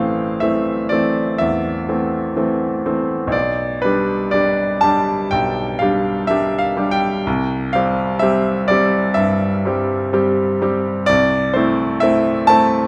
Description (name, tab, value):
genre	classical, romantic nocturne for solo piano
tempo	62 BPM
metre	4/4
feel	rubato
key	C major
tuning	A4 = 439 Hz
part	bright concert grand piano	solo	0.0-12.9 s	A1 to A5	-18 LUFS	equal	none
room	moderate recital hall reverb, RT60 1.5 s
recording	none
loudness	-18 LUFS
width	mono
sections	0.0-12.9 A section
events	none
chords	0.0 Am; 3.3 G/B; 7.3 C; 11.1 Am/C